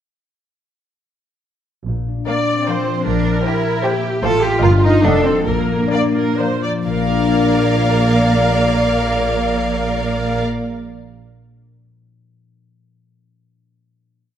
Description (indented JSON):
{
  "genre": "cinematic, playful, whimsical film cue",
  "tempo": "126-155 BPM",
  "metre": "3/4",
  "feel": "straight",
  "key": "Bb major",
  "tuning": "A4 = 441 Hz",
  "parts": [
    { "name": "concert harp", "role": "arpeggios", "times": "1.9-11.3 s", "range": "F2 to F5", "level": "-21 LUFS", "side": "left 5 dB", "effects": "none" },
    { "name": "clear studio double bass section", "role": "bass", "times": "1.9-10.4 s", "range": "F1 to Bb1", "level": "-20 LUFS", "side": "right 3 dB", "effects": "none" },
    { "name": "rich studio violin section", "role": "melody", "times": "2.3-10.4 s", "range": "F5 to G5", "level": "-24 LUFS", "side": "left 2 dB", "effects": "none" },
    { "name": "warm studio violin section", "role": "second line", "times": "2.3-10.4 s", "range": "G4 to Eb5", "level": "-23 LUFS", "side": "left 1 dB", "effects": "none" },
    { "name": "rich studio viola section", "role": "accompaniment", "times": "2.3-10.4 s", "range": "F4 to D5", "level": "-22 LUFS", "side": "right 1 dB", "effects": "none" },
    { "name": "rich studio cello section", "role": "bass", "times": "2.3-10.4 s", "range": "Bb3 to A4", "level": "-21 LUFS", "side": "right 1 dB", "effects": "none" }
  ],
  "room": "wet scoring stage reverb, RT60 1.5 s",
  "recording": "none",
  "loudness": "-14 LUFS",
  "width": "side -9 dB against mid",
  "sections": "1.9-6.9 A section; 6.9-9.7 final chord",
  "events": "slowing down 3.6-6.9",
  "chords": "1.9 Bb; 3.1 C7/Bb; 4.2 F/A; 4.6 Eb/G; 5.0 F7b9; 5.5 Bb"
}